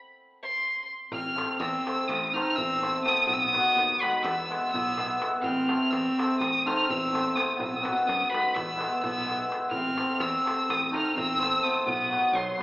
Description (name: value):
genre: balkan folk, Balkan wedding band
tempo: 252 BPM (eighths)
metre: 9/8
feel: straight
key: A hungarian minor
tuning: A4 = 440 Hz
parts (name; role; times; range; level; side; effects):
- warm violin; melody; 0.4-12.6 s; B5 to F6; -27 LUFS; equal; none
- clear clarinet; second line; 1.1-12.6 s; F#3 to D#4; -31 LUFS; equal; none
- modern bright fingered electric bass; bass; 1.1-12.5 s; A1 to F#2; -41 LUFS; equal; none
- darbuka; percussion; 1.1-12.6 s; none; -36 LUFS; equal; none
- cimbalom; accompaniment; 1.4-12.6 s; F#3 to C5; -30 LUFS; left 1 dB; none
room: wet recital hall reverb, RT60 1.5 s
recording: recorded in a church or concert hall, AM radio sound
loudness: -24 LUFS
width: side -20 dB against mid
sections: 0.0-1.1 A section; 1.1-12.6 B section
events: violin solo 0.0-1.1; stop 0.0-1.1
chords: 0.0 N.C.; 1.1 Am; 3.3 B; 4.2 E; 5.4 Am; 7.6 B; 8.5 E; 9.7 Am; 11.9 B